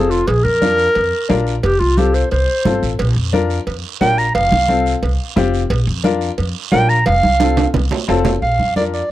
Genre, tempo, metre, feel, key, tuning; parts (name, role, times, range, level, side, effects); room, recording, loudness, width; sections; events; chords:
latin, cumbia; 177 BPM; 4/4; straight; Bb major; A4 = 440 Hz
warm clarinet; melody; 0.0-9.1 s; F4 to Bb5; -16 LUFS; right 1 dB
warm upright piano; accompaniment; 0.0-9.0 s; C4 to Bb4; -20 LUFS; left 7 dB
upright bass; bass; 0.0-9.0 s; F1 to F2; -18 LUFS; equal
guiro; percussion; 0.1-9.1 s; -31 LUFS; right 13 dB
cowbell and timbales; percussion; 0.3-8.3 s; -24 LUFS; right 5 dB
congas; percussion; 0.6-8.9 s; -20 LUFS; right 1 dB
little or no reverb; dry, close 1970s-style studio recording; -13 LUFS; side -14 dB against mid
0.0-8.4 A section
clarinet solo 0.0-8.4; drum fill 7.1-8.4
0.3 Bb; 1.6 F; 3.0 Bb; 4.3 F; 5.7 Bb; 7.1 F; 8.4 Bb